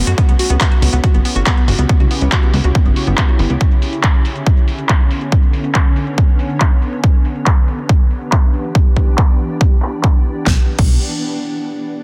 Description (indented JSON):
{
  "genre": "uplifting trance",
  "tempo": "140 BPM",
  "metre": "4/4",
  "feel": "straight",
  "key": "B minor",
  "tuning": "A4 = 439 Hz",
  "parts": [
    { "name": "shimmering ambient pad", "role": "sustained chords", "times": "0.0-10.7 s", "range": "C#3 to G4", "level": "-26 LUFS", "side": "equal", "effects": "chorus, built-in reverb, sidechain pumping" },
    { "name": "plucky analog bass", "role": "bass", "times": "0.0-3.6, 10.5-11.0 s", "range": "G1 to F#2", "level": "-18 LUFS", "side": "equal", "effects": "tube saturation, sidechain pumping" },
    { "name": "analog pluck", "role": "arpeggios", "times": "0.1-3.6 s", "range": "B3 to F#4", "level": "-25 LUFS", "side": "equal", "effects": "chorus, sidechain pumping, dub echo" },
    { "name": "big-room dance drum kit", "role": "drums", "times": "0.1-10.9 s", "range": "crash cymbal, handclaps, hi-hat, shaker, snare drum", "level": "-25 LUFS", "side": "equal", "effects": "overdrive, low-pass filter on hats, low-pass filter on perc, low-pass filter on snare, low-pass filter on cymbals" },
    { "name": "electronic kick drum", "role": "drums", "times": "0.2-10.9 s", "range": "none", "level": "-14 LUFS", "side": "equal", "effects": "overdrive" }
  ],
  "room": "digital ambience",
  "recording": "dense, heavily limited modern master",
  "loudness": "-14 LUFS",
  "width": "mono",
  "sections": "0.0-10.5 A section; 10.5-12.0 B section",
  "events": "filter sweep on drum 0.0-10.5",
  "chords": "0.2 C#dim; 3.6 Bmadd9; 7.0 Em7; 10.5 Bmadd9"
}